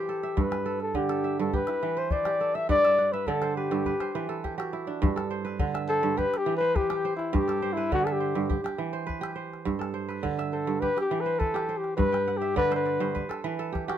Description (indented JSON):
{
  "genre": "west african traditional, West African string and xylophone music",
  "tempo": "104 BPM",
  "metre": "4/4",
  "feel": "straight",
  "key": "G major",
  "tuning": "A4 = 440 Hz",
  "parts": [
    { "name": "trumpet with bucket mute", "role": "melody", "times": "0.0-13.3 s", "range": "E4 to E5", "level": "-26 LUFS", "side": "left 2 dB", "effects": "none" },
    { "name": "kora", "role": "arpeggios", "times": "0.0-14.0 s", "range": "G2 to G5", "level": "-30 LUFS", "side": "right 6 dB", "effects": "none" },
    { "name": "calabash", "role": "percussion", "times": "0.2-14.0 s", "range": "none", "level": "-30 LUFS", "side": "left 2 dB", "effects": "none" }
  ],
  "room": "light reverb",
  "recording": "minimal, uncompressed stereo recording",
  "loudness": "-25 LUFS",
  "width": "side -10 dB against mid",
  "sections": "0.0-5.0 A section; 5.0-14.0 B section",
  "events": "kora fill 2.7-5.0, 12.1-14.0; muted trumpet solo 5.0-14.0",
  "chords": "0.4 G; 1.5 Em; 2.7 G5; 3.9 Em; 5.0 G; 6.2 Em; 7.3 G; 8.5 Em; 9.7 G; 10.8 Em; 12.0 G5; 13.2 Em",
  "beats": "| 0.38 0.96 1.54 2.12 | 2.70 3.28 3.86 4.43 | 5.01 5.59 6.17 6.75 | 7.33 7.91 8.49 9.07 | 9.65 10.24 10.82 11.40 | 11.98 12.57 13.15 13.74"
}